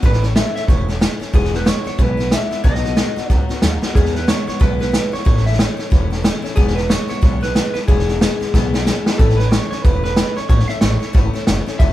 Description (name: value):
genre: rockabilly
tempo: 184 BPM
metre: 4/4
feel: swing 60% on 8ths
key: E major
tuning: A4 = 440 Hz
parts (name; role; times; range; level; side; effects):
- picked steel-string acoustic guitar; accompaniment; 0.0-11.9 s; E2 to F#4; -26 LUFS; left 4 dB; none
- upright bass; bass; 0.0-11.9 s; E1 to E2; -20 LUFS; equal; none
- vintage drum kit; drums; 0.0-11.9 s; hi-hat, kick drum, snare drum; -16 LUFS; equal; none
- electric guitar through a small old amp; melody; 0.1-11.9 s; G#4 to E5; -23 LUFS; equal; none
room: light reverb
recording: band playing live in one room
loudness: -14 LUFS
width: side -14 dB against mid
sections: 0.0-4.0 A section; 4.0-11.9 A section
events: drum fill 3.8, 8.5-9.2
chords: 0.0 A; 1.3 E; 2.6 B; 4.0 E; 5.3 A; 6.6 E; 9.2 A